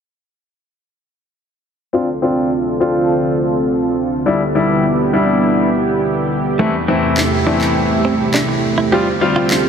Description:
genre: dance-pop.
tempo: 103 BPM.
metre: 4/4.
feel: straight.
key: D dorian.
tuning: A4 = 439 Hz.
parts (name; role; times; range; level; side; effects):
clear baby grand piano; accompaniment; 1.9-9.5 s; E3 to F4; -17 LUFS; left 3 dB; low-pass filter.
chorused pulse-width pad; sustained chords; 1.9-9.7 s; E2 to A4; -16 LUFS; right 2 dB; low-pass filter.
direct-recorded clean electric guitar; riff; 6.6-9.4 s; A3 to G4; -22 LUFS; right 3 dB; lush chorus, low-pass filter.
electronic handclaps and snare drum; drums; 7.2-9.6 s; none; -21 LUFS; equal; overdrive.
room: wet huge ambient reverb, RT60 8.2 s.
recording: dreamy mix soaked in reverb.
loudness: -13 LUFS.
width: side -7 dB against mid.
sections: 1.9-9.7 A section.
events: filter sweep 1.9-9.7.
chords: 1.9 Dm7; 4.3 Em7; 6.6 C6/E; 8.9 G7sus4.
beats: | 1.93 2.52 3.10 3.68 | 4.26 4.84 5.43 6.01 | 6.59 7.17 7.76 8.34 | 8.92 9.51.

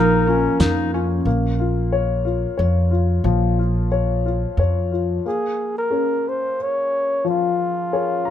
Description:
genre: acoustic folk-pop ballad.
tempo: 90 BPM.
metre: 3/4.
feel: straight.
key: Bb minor.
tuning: A4 = 440 Hz.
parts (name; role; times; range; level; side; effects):
breathy flugelhorn; melody; 0.0-0.9, 5.3-8.3 s; F4 to Db5; -21 LUFS; left 1 dB; none.
mellow clarinet; second line; 0.0-1.1 s; Db4 to Eb4; -23 LUFS; left 4 dB; none.
warm upright piano; accompaniment; 0.0-8.3 s; F3 to Bb5; -23 LUFS; left 6 dB; none.
concert harp; arpeggios; 0.0-3.8 s; F3 to Ab4; -24 LUFS; right 5 dB; none.
upright bass; bass; 0.0-5.2 s; Bb1 to F2; -20 LUFS; equal; none.
cloth-damped thuddy drum kit; drums; 0.6-0.8 s; hi-hat, snare drum; -21 LUFS; right 1 dB; none.
room: little or no reverb.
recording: none.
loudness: -18 LUFS.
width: side -10 dB against mid.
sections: 0.0-1.3 A section; 1.3-5.3 B section; 5.3-8.3 C section.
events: none.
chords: 0.0 Bbm7; 1.3 Bbm; 5.3 Bbm7.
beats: 0.59 | 1.26 1.92 2.59 | 3.25 3.92 4.58 | 5.25 5.92 6.59 | 7.26 7.93.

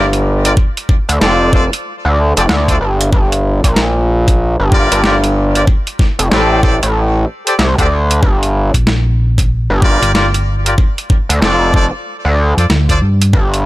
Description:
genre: glitch hop.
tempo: 94 BPM.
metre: 4/4.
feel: swing 62% on 16ths.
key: G minor.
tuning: A4 = 439 Hz.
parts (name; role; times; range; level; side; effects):
brilliant horn section; stabs; 0.0-13.0 s; F4 to D5; -17 LUFS; left 1 dB; vintage 12-bit sampler grit, sidechain pumping, digital delay.
gritty driven synth bass; bass; 0.0-13.7 s; F1 to D2; -12 LUFS; equal; overdrive.
boom bap sampler-style drum kit; drums; 0.1-13.6 s; hi-hat, snare drum; -17 LUFS; equal; overdrive.
electronic kick drum; drums; 0.6-13.5 s; none; -12 LUFS; equal; none.
hollow-body short-scale fingered electric bass; bass; 8.7-13.3 s; G1 to G2; -13 LUFS; equal; none.
room: little or no reverb.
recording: none.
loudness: -10 LUFS.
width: side -17 dB against mid.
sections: 0.0-13.7 A section.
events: none.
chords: 0.0 Gm7; 0.6 Dm7; 3.1 Gm7; 5.7 F6 (rootless); 8.2 Gm7; 10.8 Dm7.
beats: | 0.57 1.21 1.84 2.48 | 3.12 3.76 4.40 5.04 | 5.67 6.31 6.95 7.59 | 8.23 8.87 9.50 10.14 | 10.78 11.42 12.06 12.70 | 13.33.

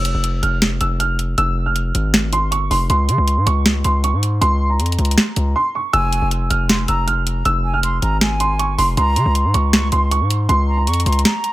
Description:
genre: hip hop, trap.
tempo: 158 BPM.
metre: 4/4.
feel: half-time.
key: F harmonic minor.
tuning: A4 = 440 Hz.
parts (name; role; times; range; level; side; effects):
dark concert grand piano; melody; 0.0-11.5 s; Bb5 to F6; -20 LUFS; right 2 dB; low-pass filter, tape echo.
distorted 808-style bass; bass; 0.0-11.2 s; F1 to Db3; -18 LUFS; equal; distortion.
trap drum kit; drums; 0.0-11.5 s; hi-hat, snare drum; -18 LUFS; equal; none.
silver concert flute; second line; 5.9-11.5 s; Ab5 to Db6; -24 LUFS; right 1 dB; tape echo.
room: digital ambience.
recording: none.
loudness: -15 LUFS.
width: side -16 dB against mid.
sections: 0.0-11.5 A section.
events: silent gap 5.6-5.9; kick muted 11.3.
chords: 0.0 Fm; 2.9 Db5; 5.9 Fm; 9.0 Db5.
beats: 0.24 0.62 1.00 | 1.38 1.76 2.14 2.52 | 2.90 3.28 3.66 4.04 | 4.42 4.80 5.18 5.55 | 5.93 6.32 6.70 7.07 | 7.45 7.83 8.21 8.59 | 8.97 9.35 9.73 10.11 | 10.49 10.87 11.25.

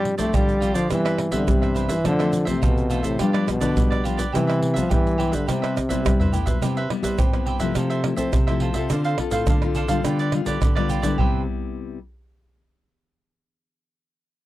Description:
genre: samba and choro.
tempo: 105 BPM.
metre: 4/4.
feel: straight.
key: C major.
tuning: A4 = 440 Hz.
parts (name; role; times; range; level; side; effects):
warm trombone; melody; 0.0-6.3 s; G2 to A3; -23 LUFS; equal; none.
cavaquinho; accompaniment; 0.0-11.4 s; D4 to F5; -29 LUFS; right 4 dB; none.
nylon-string guitar; accompaniment; 0.0-12.0 s; F2 to A4; -28 LUFS; left 7 dB; none.
nylon-string guitar; bass; 0.0-11.4 s; G2 to C4; -26 LUFS; equal; none.
pandeiro, egg shaker, surdo and tamborim; percussion; 0.1-11.3 s; none; -23 LUFS; right 1 dB; none.
room: light reverb.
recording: dry, close 1970s-style studio recording.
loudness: -19 LUFS.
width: side -15 dB against mid.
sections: 0.0-6.6 A section; 6.6-11.2 B section; 11.2-13.5 C section.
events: drum fill 6.1-6.6.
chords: 0.0 G7sus4; 0.9 Cmaj7/G; 2.1 Fmaj7; 3.2 G7; 4.3 Cmaj7; 7.8 Fmaj7/C; 8.9 Dm7; 10.0 G7/D; 11.2 Cmaj7.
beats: 0.34 0.91 1.48 | 2.05 2.62 3.20 3.77 | 4.34 4.91 5.48 6.05 | 6.62 7.19 7.76 8.33 | 8.90 9.47 10.04 10.61 | 11.18 11.75.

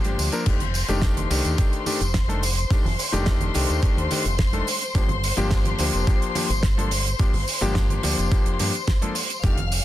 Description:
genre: nu-disco, nu disco.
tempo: 107 BPM.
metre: 4/4.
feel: straight.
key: G minor.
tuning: A4 = 440 Hz.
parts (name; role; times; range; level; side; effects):
bright electric grand piano; accompaniment; 0.0-9.6 s; Eb3 to Bb4; -28 LUFS; left 3 dB; sidechain pumping, tape echo.
warm studio string section; sustained chords; 0.0-9.8 s; C5 to F6; -30 LUFS; left 5 dB; sidechain pumping.
fingered electric bass with an envelope filter; bass; 0.0-9.8 s; F1 to G2; -25 LUFS; equal; sidechain pumping.
damped 70s drum kit; drums; 0.0-9.8 s; crash cymbal, hi-hat, snare drum, tambourine; -28 LUFS; right 3 dB; none.
tambourine and congas; percussion; 0.0-9.8 s; none; -35 LUFS; right 5 dB; none.
electronic kick drum; drums; 0.5-9.6 s; none; -22 LUFS; equal; none.
room: studio ambience.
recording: dense, heavily limited modern master.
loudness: -20 LUFS.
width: side -14 dB against mid.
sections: 0.0-9.8 A section.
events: none.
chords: 0.5 F13; 4.7 Gm7.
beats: | 0.46 1.02 1.58 2.15 | 2.71 3.27 3.83 4.39 | 4.95 5.51 6.07 6.63 | 7.19 7.75 8.31 8.88 | 9.44.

